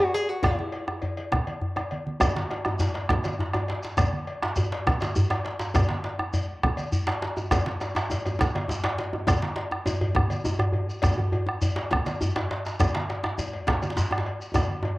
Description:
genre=west african traditional, West African drum ensemble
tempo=136 BPM (dotted quarters)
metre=12/8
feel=straight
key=E major pentatonic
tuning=A4 = 439 Hz
part: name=nylon-string guitar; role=melody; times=0.0-1.9 s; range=E4 to G#4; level=-27 LUFS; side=left 1 dB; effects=cassette tape, analog delay
part: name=cowbell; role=percussion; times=0.0-15.0 s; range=none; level=-36 LUFS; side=left 3 dB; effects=none
part: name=congas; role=percussion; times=0.1-14.9 s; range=none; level=-33 LUFS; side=right 2 dB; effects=none
part: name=djembe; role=percussion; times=0.3-14.8 s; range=none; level=-31 LUFS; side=left 1 dB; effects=none
part: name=bombo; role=percussion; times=0.4-14.9 s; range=none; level=-28 LUFS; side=right 1 dB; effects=none
part: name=djembe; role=percussion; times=2.2-15.0 s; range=none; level=-28 LUFS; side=equal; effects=none
part: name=shekere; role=percussion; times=2.2-14.7 s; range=none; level=-33 LUFS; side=equal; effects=none
room=moderate spring reverb, RT60 2.1 s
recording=home recording on cassette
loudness=-24 LUFS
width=side -19 dB against mid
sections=0.0-2.2 A section; 2.2-15.0 B section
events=drum fill 1.8-2.2, 14.6-15.0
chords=none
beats=| 0.43 0.87 1.32 1.76 | 2.20 2.65 3.09 3.54 | 3.98 4.42 4.87 5.31 | 5.75 6.19 6.63 7.08 | 7.52 7.96 8.40 8.84 | 9.28 9.72 10.16 10.60 | 11.04 11.48 11.92 12.36 | 12.80 13.24 13.68 14.11 | 14.55

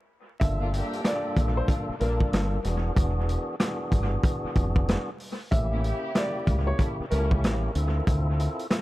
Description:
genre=hip hop, boom-bap hip-hop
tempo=94 BPM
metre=4/4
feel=swing 63% on 16ths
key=unclear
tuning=A4 = 438 Hz
part: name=warm upright piano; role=melody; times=0.4-7.3 s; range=Bb4 to E5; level=-34 LUFS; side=equal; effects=high-pass filter, low-pass filter, dub echo
part: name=tonewheel organ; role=accompaniment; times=0.4-8.8 s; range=G2 to A4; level=-32 LUFS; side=equal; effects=overdrive, fast rotary speaker, cassette tape, high-pass filter, low-pass filter
part: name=deep dub fingered electric bass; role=bass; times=0.4-8.5 s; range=E1 to D2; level=-26 LUFS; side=equal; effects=none
part: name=vintage drum kit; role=drums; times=0.4-8.8 s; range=hi-hat, kick drum, rim click, snare drum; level=-27 LUFS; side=equal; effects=dub echo
part: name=warm studio string section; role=stabs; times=0.6-7.4 s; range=C#3 to A4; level=-38 LUFS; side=equal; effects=high-pass filter, low-pass filter, dub echo
room=small room ambience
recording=echo-heavy mix, vinyl crackle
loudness=-24 LUFS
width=side -17 dB against mid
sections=0.0-8.8 A section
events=break 0.0-0.4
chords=0.4 Gm7; 2.6 E7; 5.5 A7b9; 7.8 Dm7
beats=| 0.41 1.05 1.69 2.32 | 2.96 3.60 4.24 4.88 | 5.52 6.15 6.79 7.43 | 8.07 8.71

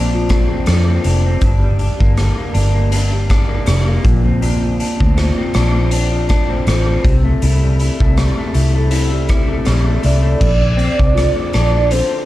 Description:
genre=indie pop, bedroom pop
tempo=80 BPM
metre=4/4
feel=swing 55% on 16ths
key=Bb lydian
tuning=A4 = 440 Hz
part: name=electric guitar through a small old amp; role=accompaniment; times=0.0-12.3 s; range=G2 to E4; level=-20 LUFS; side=left 2 dB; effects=wide subtle chorus, warbly pitch drift
part: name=vintage muted fingered electric bass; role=bass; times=0.0-12.0 s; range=F1 to F2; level=-15 LUFS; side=equal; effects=none
part: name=raw garage drum kit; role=drums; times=0.3-12.1 s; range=crash cymbal, hi-hat, kick drum, rim click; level=-18 LUFS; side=equal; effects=none
part: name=soft octave-layered synth lead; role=melody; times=10.0-12.3 s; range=C5 to D5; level=-18 LUFS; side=right 3 dB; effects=lush chorus
room=studio reverb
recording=dark, warm production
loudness=-12 LUFS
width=side -15 dB against mid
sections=0.0-10.4 A section; 10.4-12.3 B section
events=none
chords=0.0 Bbadd9; 1.4 Gm; 4.0 Bbadd9; 7.0 C6; 10.4 Bbadd9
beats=0.68 | 1.42 2.17 2.92 3.67 | 4.42 5.17 5.92 6.67 | 7.42 8.16 8.91 9.66 | 10.41 11.16 11.91

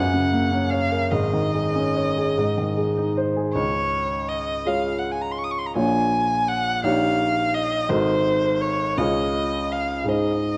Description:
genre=classical, romantic duo for violin and grand piano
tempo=48-57 BPM (dotted quarters)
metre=6/8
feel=rubato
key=Db major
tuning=A4 = 440 Hz
part: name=warm violin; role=melody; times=0.0-10.6 s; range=C5 to Eb6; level=-26 LUFS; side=equal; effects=none
part: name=warm baby grand piano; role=accompaniment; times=0.0-10.6 s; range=Ab1 to Db5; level=-25 LUFS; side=equal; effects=none
room=wet scoring stage reverb, RT60 1.9 s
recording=dark, warm production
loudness=-23 LUFS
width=mono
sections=0.0-3.5 A section; 3.5-10.6 B section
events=none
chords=0.0 Gb; 1.1 Absus4; 2.4 Ab; 3.5 Db; 5.8 Bbm7; 6.8 Eb7/Bb; 7.9 Ab7b9; 9.0 Db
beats=| 1.12 2.36 | 3.54 4.65 | 5.75 6.84 | 7.89 8.97 | 10.09

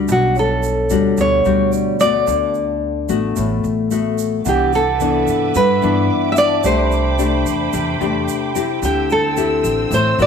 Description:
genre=bossa nova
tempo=110 BPM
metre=4/4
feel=straight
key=D major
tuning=A4 = 440 Hz
part: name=nylon-string guitar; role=accompaniment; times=0.0-10.3 s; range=G2 to B4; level=-19 LUFS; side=left 7 dB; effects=none
part: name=upright bass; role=bass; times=0.0-10.3 s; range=A1 to G2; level=-23 LUFS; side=right 2 dB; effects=none
part: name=nylon-string guitar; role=melody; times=0.1-10.3 s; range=F#4 to E5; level=-17 LUFS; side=right 1 dB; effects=none
part: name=egg shaker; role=percussion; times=0.1-10.3 s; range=none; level=-33 LUFS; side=right 15 dB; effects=none
part: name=vibraphone with medium hard mallets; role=accompaniment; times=0.4-8.8 s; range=C#5 to B5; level=-24 LUFS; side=right 11 dB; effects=none
part: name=clear studio string section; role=sustained chords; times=4.5-10.3 s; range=C4 to E6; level=-26 LUFS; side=right 3 dB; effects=none
room=wet echo chamber reverb, RT60 1.3 s, small room ambience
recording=1960s-style stereo with parts hard left and right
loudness=-15 LUFS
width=side -6 dB against mid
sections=0.0-4.5 A section; 4.5-10.3 B section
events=none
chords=0.1 Gmaj7/B; 2.3 D6; 4.5 Cmaj9; 6.6 Am11/C; 8.8 D9sus4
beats=| 0.08 0.63 1.18 1.72 | 2.27 2.82 3.36 3.91 | 4.46 5.00 5.55 6.10 | 6.64 7.19 7.74 8.28 | 8.83 9.37 9.92

